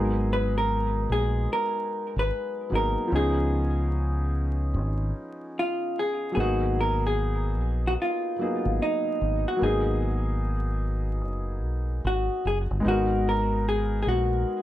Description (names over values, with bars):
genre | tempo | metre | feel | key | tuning
lo-fi hip hop | 74 BPM | 4/4 | swing 64% on 16ths | G# dorian | A4 = 440 Hz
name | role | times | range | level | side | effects
vintage hollow-body jazz guitar | melody | 0.0-14.6 s | D#4 to B4 | -27 LUFS | equal | low-pass filter, analog delay
felt-muted upright piano | accompaniment | 0.0-14.6 s | E#3 to A#4 | -30 LUFS | equal | cassette tape, low-pass filter
deep dub fingered electric bass | bass | 0.0-14.4 s | F#1 to C#2 | -26 LUFS | equal | none
room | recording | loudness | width
light reverb | vinyl crackle | -24 LUFS | side -14 dB against mid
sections
0.0-12.8 A section; 12.8-14.6 A section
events
none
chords
0.0 G#m9; 3.1 C#7; 6.4 G#m9; 9.6 G#m7; 12.8 G#m9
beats
0.69 1.50 2.31 | 3.12 3.93 4.74 5.55 | 6.36 7.17 7.99 8.80 | 9.61 10.42 11.23 12.04 | 12.85 13.66 14.47